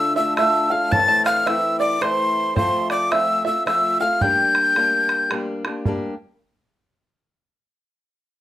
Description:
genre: celtic folk, Celtic waltz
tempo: 110 BPM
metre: 3/4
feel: swing 61% on 8ths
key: G dorian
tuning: A4 = 440 Hz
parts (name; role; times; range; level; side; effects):
- breathy mellow mid whistle; melody; 0.0-5.3 s; C6 to A6; -18 LUFS; left 1 dB; none
- felt-muted upright piano; second line; 0.0-5.3 s; C5 to A5; -27 LUFS; left 1 dB; none
- open-back banjo; second line; 0.0-5.3 s; C5 to A5; -27 LUFS; right 7 dB; none
- fingerpicked old ladder-braced acoustic guitar; accompaniment; 0.0-6.1 s; A2 to G4; -26 LUFS; left 1 dB; none
- bodhran; percussion; 0.4-6.2 s; none; -26 LUFS; right 2 dB; none
room: moderate studio reverb, RT60 0.6 s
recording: rough home demo mix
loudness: -17 LUFS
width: side -13 dB against mid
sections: 0.0-5.9 A section; 5.9-7.5 B section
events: none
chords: 0.0 Dm; 0.9 Am; 2.6 F; 4.2 Gm

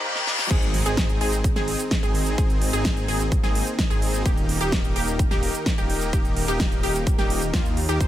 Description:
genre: EDM, festival progressive house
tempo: 128 BPM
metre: 4/4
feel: straight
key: Ab major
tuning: A4 = 440 Hz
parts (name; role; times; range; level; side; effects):
- clear grand piano; accompaniment; 0.0-0.5 s; G3 to Bb4; -44 LUFS; right 3 dB; none
- supersaw chords; riff; 0.0-8.1 s; Ab3 to C5; -30 LUFS; equal; cassette tape, sidechain pumping, ping-pong delay
- reverse cymbal and impact; sound effects; 0.0-2.4 s; none; -28 LUFS; left 2 dB; none
- big-room dance drum kit; drums; 0.2-8.1 s; crash cymbal, hi-hat, shaker, snare drum; -28 LUFS; right 1 dB; none
- lush unison pad; sustained chords; 1.3-8.1 s; Eb3 to Bb4; -33 LUFS; left 2 dB; chorus, sidechain pumping
- wide unison pluck; arpeggios; 0.5-8.1 s; F4 to C5; -30 LUFS; equal; sidechain pumping, ping-pong delay
- wide detuned saw bass; bass; 0.5-8.1 s; Eb1 to Eb2; -27 LUFS; equal; chorus, sidechain pumping
- electronic kick drum; drums; 0.5-8.1 s; none; -23 LUFS; equal; none
room: little or no reverb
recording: high-pass filter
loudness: -20 LUFS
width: side -13 dB against mid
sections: 0.5-8.1 A section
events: break 0.0-0.5; reverse cymbal 0.0-0.5; drum fill 0.2-0.5; drop 0.5-8.1; impact 0.5-2.4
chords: 0.0 Eb; 0.5 Ab; 4.3 Eb

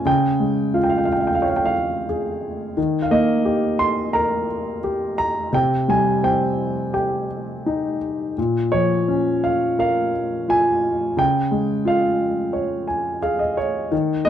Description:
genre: classical, lyrical solo piano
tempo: 87 BPM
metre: 4/4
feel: rubato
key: Db lydian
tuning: A4 = 439 Hz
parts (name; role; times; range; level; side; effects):
- warm grand piano; solo; 0.0-14.3 s; Bb2 to C6; -18 LUFS; equal; none
room: light reverb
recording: dark, warm production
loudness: -18 LUFS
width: side -10 dB against mid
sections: 0.0-14.3 A section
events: grand piano fill 12.5-13.9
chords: 0.1 Db; 2.8 Eb; 5.5 Cm; 8.4 Bbm; 11.2 Db

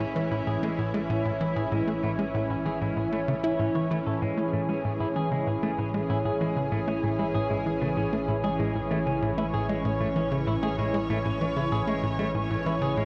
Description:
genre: ambient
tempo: 96 BPM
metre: 4/4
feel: straight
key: A major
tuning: A4 = 440 Hz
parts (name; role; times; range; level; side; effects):
- lush unison pad; sustained chords; 0.0-13.1 s; E3 to C#5; -31 LUFS; equal; chorus
- semi-hollow electric guitar; arpeggios; 0.0-13.1 s; G#3 to C#5; -37 LUFS; equal; delay
- tight sequencer bass; riff; 0.0-13.1 s; A2 to E4; -32 LUFS; equal; delay
- analog drone; bass; 0.1-13.1 s; A1; -44 LUFS; equal; chorus, tube saturation
room: wet huge ambient reverb, RT60 7.8 s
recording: worn, warbling old tape, cassette tape, warbly pitch drift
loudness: -28 LUFS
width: mono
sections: 0.0-13.1 A section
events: fade-in on synth drone 0.0-13.1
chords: 0.0 Amaj7

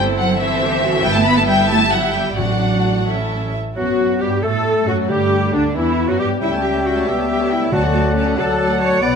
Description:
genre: quick classical-period movement for symphony orchestra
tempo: 91 BPM (dotted quarters)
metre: 6/8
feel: rubato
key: D major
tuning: A4 = 440 Hz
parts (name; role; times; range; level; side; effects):
- rich symphonic violin section; melody; 0.0-9.2 s; D4 to B5; -22 LUFS; left 4 dB; none
- dark chamber violin section; second line; 0.0-9.2 s; D4 to E5; -25 LUFS; left 1 dB; none
- rich chamber viola section; accompaniment; 0.0-9.2 s; D3 to G4; -25 LUFS; right 2 dB; none
- clear chamber cello section; bass; 0.0-9.2 s; E3 to D5; -22 LUFS; right 2 dB; none
- clear chamber double bass section; bass; 0.0-9.2 s; G1 to A2; -23 LUFS; right 3 dB; none
- timpani; percussion; 2.4-3.0, 5.1-5.7, 7.7-8.3 s; A2 to D3; -26 LUFS; equal; none
- mellow clarinet; second line; 3.8-9.2 s; D4 to E5; -26 LUFS; left 3 dB; none
- mellow hollow silver concert flute; second line; 3.8-9.2 s; D4 to B5; -26 LUFS; left 3 dB; none
- warm oboe; second line; 3.8-9.2 s; D4 to G5; -27 LUFS; right 2 dB; none
- warm bassoon; accompaniment; 3.8-9.2 s; D3 to A3; -25 LUFS; right 3 dB; none
- dark French horn section; sustained chords; 3.8-9.2 s; F#3 to C#4; -22 LUFS; left 6 dB; none
room: moderate scoring stage reverb, RT60 1.6 s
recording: none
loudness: -15 LUFS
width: side -6 dB against mid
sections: 0.0-3.8 A section; 3.8-9.2 B section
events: none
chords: 0.0 Am7/G; 1.0 Em/G; 2.4 D/A; 3.1 A; 3.8 Gmaj9/F#; 5.1 Em7; 6.4 A7/C#; 7.7 D

